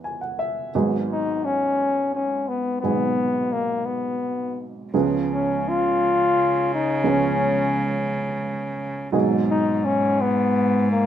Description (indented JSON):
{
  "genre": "acoustic folk-pop ballad",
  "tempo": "57 BPM (dotted quarters)",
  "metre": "6/8",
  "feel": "straight",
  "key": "G# minor",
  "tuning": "A4 = 440 Hz",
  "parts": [
    { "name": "warm upright piano", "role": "accompaniment", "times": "0.0-11.1 s", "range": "G#1 to G#5", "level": "-25 LUFS", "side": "right 4 dB", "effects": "none" },
    { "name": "mellow flugelhorn", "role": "melody", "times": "1.1-11.1 s", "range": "A#3 to E#4", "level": "-21 LUFS", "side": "left 3 dB", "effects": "none" },
    { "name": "rich cello", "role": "bass", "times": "4.9-11.1 s", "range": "G#2 to C#3", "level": "-25 LUFS", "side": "equal", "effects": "none" }
  ],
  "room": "moderate studio reverb, RT60 0.8 s",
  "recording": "minimal, uncompressed stereo recording",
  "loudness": "-20 LUFS",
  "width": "side -10 dB against mid",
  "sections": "0.0-11.1 A section",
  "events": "none",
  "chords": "0.0 C#m7/E; 0.7 G#m7; 4.9 C#7; 9.1 G#m7",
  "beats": "| 0.74 1.79 | 2.84 3.89 | 4.94 6.00 | 7.05 8.10 | 9.14 10.19"
}